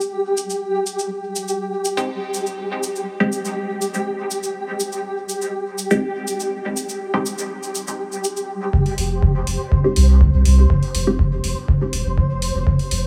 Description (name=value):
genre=dub techno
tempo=122 BPM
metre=4/4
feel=straight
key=F minor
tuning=A4 = 440 Hz
part: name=electronic cabasa and hi-hat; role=drums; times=0.0-13.0 s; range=none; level=-30 LUFS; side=equal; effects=none
part: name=flickering grainy texture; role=texture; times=0.0-13.1 s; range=G4 to C5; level=-28 LUFS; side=equal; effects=built-in reverb, sidechain pumping
part: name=filtered dub chord stab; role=stabs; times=2.0-11.2 s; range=Ab3 to G4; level=-27 LUFS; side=equal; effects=phaser, cassette tape, sidechain pumping, dub echo
part: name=pure sine sub bass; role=bass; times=8.7-13.1 s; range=Eb1 to C2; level=-19 LUFS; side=equal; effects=sidechain pumping
part: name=electronic kick drum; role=drums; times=8.7-12.8 s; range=none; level=-20 LUFS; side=equal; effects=none
room=light reverb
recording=none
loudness=-21 LUFS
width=mono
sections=0.0-8.7 A section; 8.7-13.1 B section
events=filter sweep on synth stab 0.0-8.7, 8.7-13.1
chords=0.0 N.C.; 8.7 F7(no3)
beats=0.37 | 0.86 1.36 1.85 2.34 | 2.83 3.32 3.81 4.31 | 4.80 5.29 5.78 6.27 | 6.77 7.26 7.75 8.24 | 8.73 9.22 9.72 10.21 | 10.70 11.19 11.68 12.18 | 12.67